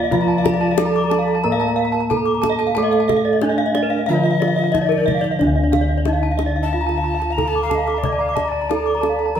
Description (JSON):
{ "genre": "Balinese gamelan", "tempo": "91 BPM", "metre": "4/4", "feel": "straight", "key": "D pelog", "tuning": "A4 = 440 Hz", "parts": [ { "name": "gamelan-type bronze metallophone", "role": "melody", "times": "0.0-9.4 s", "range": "D4 to D5", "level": "-22 LUFS", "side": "right 5 dB", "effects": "none" }, { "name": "breathy alto recorder", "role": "second line", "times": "0.0-9.4 s", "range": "D5 to Bb5", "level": "-26 LUFS", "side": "left 6 dB", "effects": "none" }, { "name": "gamelan-type bronze metallophone", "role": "accompaniment", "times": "0.0-5.4 s", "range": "F3 to Bb3", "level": "-22 LUFS", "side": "left 1 dB", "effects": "none" }, { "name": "gamelan-type bronze metallophone", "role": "arpeggios", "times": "0.0-9.4 s", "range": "Bb4 to D6", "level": "-24 LUFS", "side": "left 4 dB", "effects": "none" }, { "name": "gamelan-type bronze metallophone", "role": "arpeggios", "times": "0.0-9.3 s", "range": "Bb4 to Bb5", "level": "-24 LUFS", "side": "right 5 dB", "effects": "none" }, { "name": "gamelan-type bossed gongs", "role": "bass", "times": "0.0-9.4 s", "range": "D2 to D5", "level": "-23 LUFS", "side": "left 1 dB", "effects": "none" }, { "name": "kendang", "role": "percussion", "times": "0.1-9.2 s", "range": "none", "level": "-26 LUFS", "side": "left 5 dB", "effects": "none" } ], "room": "wet large studio reverb, RT60 1.4 s", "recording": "band playing live in one room", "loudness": "-16 LUFS", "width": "side -8 dB against mid", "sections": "0.0-5.4 A section; 5.4-9.4 A section", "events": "none", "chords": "none" }